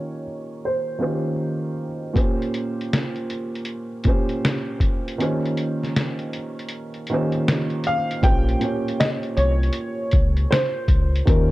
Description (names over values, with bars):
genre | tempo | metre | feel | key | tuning
lo-fi hip hop | 79 BPM | 4/4 | swing 63% on 16ths | Bb dorian | A4 = 440 Hz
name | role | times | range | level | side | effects
dark upright piano | melody | 0.0-1.7, 7.9-11.5 s | Bb4 to G5 | -26 LUFS | equal | low-pass filter, analog delay
felt-muted upright piano | accompaniment | 0.0-11.5 s | Bb2 to Db5 | -25 LUFS | right 1 dB | cassette tape, low-pass filter
lo-fi sampler-style drum kit | drums | 2.2-11.5 s | hi-hat, kick drum, snare drum | -21 LUFS | equal | none
deep dub fingered electric bass | bass | 8.2-11.5 s | Bb1 to Eb2 | -20 LUFS | equal | none
room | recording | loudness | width
little or no reverb | dark, warm production | -20 LUFS | side -18 dB against mid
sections
0.0-8.2 A section; 8.2-11.5 B section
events
filter sweep 0.0-8.2; kick muted 5.2-8.2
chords
0.0 Eb13; 2.2 Bbm69; 5.2 Eb13; 8.2 Bbm69